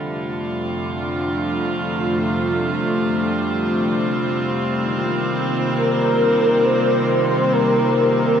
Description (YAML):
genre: ambient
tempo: free time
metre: none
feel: none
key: unclear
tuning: A4 = 441 Hz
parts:
  - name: rich chamber string section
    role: sustained chords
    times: 0.0-8.4 s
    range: F2 to C5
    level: -20 LUFS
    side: equal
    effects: none
  - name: overtone-sweeping drone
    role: drone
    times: 0.0-8.4 s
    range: C3 to G3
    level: -26 LUFS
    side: equal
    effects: chorus, built-in reverb
  - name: breathy flute-like synth lead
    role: melody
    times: 5.8-8.4 s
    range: Bb4 to C5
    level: -17 LUFS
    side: equal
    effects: ensemble chorus, diffuse ambient delay
room: wet cathedral reverb, RT60 6.1 s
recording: in a vast, echoing space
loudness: -17 LUFS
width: side -8 dB against mid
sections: 0.0-8.4 A section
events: fade-in on string section 0.0-8.4; fade-in on synth drone 0.0-8.4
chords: 0.0 Dm7/F; 4.9 F7sus4